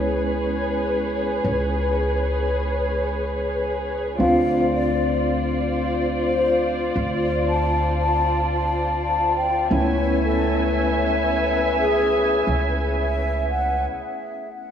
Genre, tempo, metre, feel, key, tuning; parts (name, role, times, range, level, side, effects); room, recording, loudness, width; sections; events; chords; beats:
trip hop; 87 BPM; 4/4; swing 55% on 16ths; A4 = 440 Hz
tine electric piano; accompaniment; 0.0-14.7 s; G#3 to F4; -26 LUFS; equal; tremolo, vintage 12-bit sampler grit, tape echo
dark studio violin section; sustained chords; 0.0-13.8 s; F4 to G#5; -24 LUFS; left 1 dB
upright bass; bass; 0.0-13.8 s; C#2 to D2; -26 LUFS; equal
mellow hollow concert flute; melody; 4.2-13.8 s; G#4 to A5; -24 LUFS; left 1 dB; tape echo
wet lush hall reverb, RT60 2.5 s; dreamy mix soaked in reverb, small room ambience; -19 LUFS; side -8 dB against mid
0.0-14.7 A section
break 13.8-14.7
0.0 C#m7; 4.2 Dm7; 9.7 Amaj9/C#
0.05 0.74 | 1.43 2.12 2.81 3.50 | 4.19 4.88 5.57 6.26 | 6.95 7.64 8.33 9.02 | 9.71 10.40 11.09 11.78 | 12.46 13.15 13.84 14.53